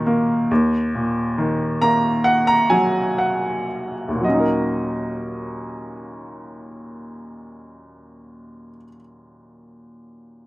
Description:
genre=classical, lyrical solo piano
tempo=51-70 BPM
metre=4/4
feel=rubato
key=Eb minor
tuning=A4 = 440 Hz
part: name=bright upright piano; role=solo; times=0.0-10.5 s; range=Eb2 to Bb5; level=-19 LUFS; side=equal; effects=none
room=little or no reverb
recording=close, detailed microphones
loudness=-18 LUFS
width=side -18 dB against mid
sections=0.5-4.3 A section; 4.3-8.7 B section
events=slowing down 0.0-4.3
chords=0.0 Ebm; 4.3 Ebm7

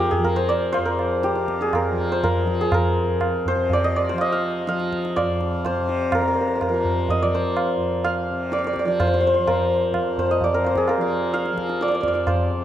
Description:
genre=indian classical, Hindustani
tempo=120-130 BPM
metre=7/4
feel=straight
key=F raga bhimpalasi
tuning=A4 = 440 Hz
part: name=santur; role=melody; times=0.0-12.6 s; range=F4 to F5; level=-21 LUFS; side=equal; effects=none
part: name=tanpura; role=drone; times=0.0-12.6 s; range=F2 to F3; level=-27 LUFS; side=equal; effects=none
part: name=tabla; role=percussion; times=0.1-12.6 s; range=none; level=-26 LUFS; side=right 1 dB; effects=none
room=moderate scoring stage reverb, RT60 1.9 s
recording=none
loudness=-19 LUFS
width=side -11 dB against mid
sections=0.0-6.1 A section; 6.1-12.6 B section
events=speeding up 0.0-12.6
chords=none

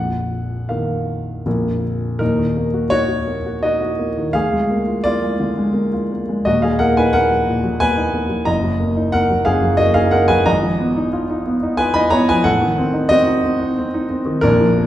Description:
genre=classical, romantic character piece for solo piano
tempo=74-93 BPM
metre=3/4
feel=rubato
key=Eb minor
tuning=A4 = 440 Hz
part: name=warm grand piano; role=solo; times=0.0-14.9 s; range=Bb0 to Cb6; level=-15 LUFS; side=equal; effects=none
room=wet recital hall reverb, RT60 1.6 s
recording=heard from further back in the room, nothing above 10.5 kHz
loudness=-15 LUFS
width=side -12 dB against mid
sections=0.0-2.2 A section; 2.2-14.9 B section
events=none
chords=0.0 Bbsus4; 1.5 Bb; 2.2 Ebm; 4.3 Bb7/D; 6.5 Ebm; 8.5 Ebm/Gb; 10.5 Fm7b5/Ab; 12.5 Adim7

